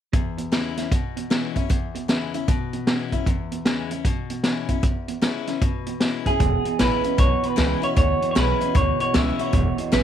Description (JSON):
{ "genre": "rockabilly", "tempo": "153 BPM", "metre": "4/4", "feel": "swing 64% on 8ths", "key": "E major", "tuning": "A4 = 440 Hz", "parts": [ { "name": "picked steel-string acoustic guitar", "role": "accompaniment", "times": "0.1-10.0 s", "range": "E2 to E4", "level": "-29 LUFS", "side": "left 10 dB", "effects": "none" }, { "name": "electric guitar through a small old amp", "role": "riff", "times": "0.1-10.0 s", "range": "E2 to C#3", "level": "-30 LUFS", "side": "right 13 dB", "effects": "spring reverb" }, { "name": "vintage drum kit", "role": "drums", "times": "0.1-10.0 s", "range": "hi-hat, kick drum, snare drum", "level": "-22 LUFS", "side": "equal", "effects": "none" }, { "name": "electric guitar through a small old amp", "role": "melody", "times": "6.3-10.0 s", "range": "G#4 to E5", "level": "-23 LUFS", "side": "right 2 dB", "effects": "tape echo" }, { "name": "upright bass", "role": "bass", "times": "6.4-10.0 s", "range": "E1 to D2", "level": "-24 LUFS", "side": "equal", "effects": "none" } ], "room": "light reverb, studio ambience", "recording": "1960s-style stereo with parts hard left and right", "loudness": "-20 LUFS", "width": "side -10 dB against mid", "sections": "0.1-6.4 A section; 6.4-10.0 B section", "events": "none", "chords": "0.1 E6" }